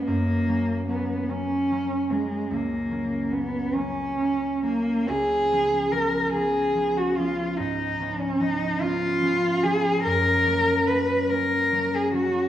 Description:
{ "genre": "classical, romantic duo for cello and harp", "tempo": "48 BPM (dotted quarters)", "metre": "12/8", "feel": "rubato", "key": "F# major", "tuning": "A4 = 440 Hz", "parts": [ { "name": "warm cello", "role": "melody", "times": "0.0-12.5 s", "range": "G#3 to B4", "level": "-23 LUFS", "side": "equal", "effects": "none" }, { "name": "concert harp", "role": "accompaniment", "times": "0.0-12.5 s", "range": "C#2 to C#4", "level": "-27 LUFS", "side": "right 1 dB", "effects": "none" } ], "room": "moderate scoring stage reverb, RT60 1.9 s", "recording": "dark, warm production", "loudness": "-22 LUFS", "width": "side -11 dB against mid", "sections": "0.0-12.5 A section", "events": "none", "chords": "0.0 F#; 5.1 C#7; 10.1 F#" }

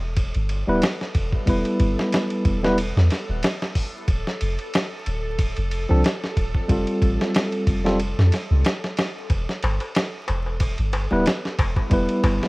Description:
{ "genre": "trip hop", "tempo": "92 BPM", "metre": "4/4", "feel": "swing 55% on 16ths", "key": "E phrygian", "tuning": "A4 = 441 Hz", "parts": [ { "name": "soft 808-style bass", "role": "bass", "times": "0.0-12.4 s", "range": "D1 to F2", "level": "-22 LUFS", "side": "equal", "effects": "none" }, { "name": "bowed-like drone", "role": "texture", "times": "0.1-12.5 s", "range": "A4", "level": "-36 LUFS", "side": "right 1 dB", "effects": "built-in reverb" }, { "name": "dusty soul sampler-style drum kit", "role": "drums", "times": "0.2-12.5 s", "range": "hi-hat, kick drum, ride cymbal, snare drum", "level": "-24 LUFS", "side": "equal", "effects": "small room ambience" }, { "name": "tine electric piano", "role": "accompaniment", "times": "0.7-12.5 s", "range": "F3 to B4", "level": "-23 LUFS", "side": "equal", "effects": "tremolo, tape echo" }, { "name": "darbuka", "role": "percussion", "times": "9.3-12.5 s", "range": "none", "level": "-31 LUFS", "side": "left 2 dB", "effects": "none" } ], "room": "light reverb", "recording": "worn, warbling old tape, cassette tape, vinyl crackle, warbly pitch drift", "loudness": "-20 LUFS", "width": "side -24 dB against mid", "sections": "0.0-12.5 A section", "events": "none", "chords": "0.0 Em; 4.1 Dm; 6.7 Fadd9; 9.3 Em" }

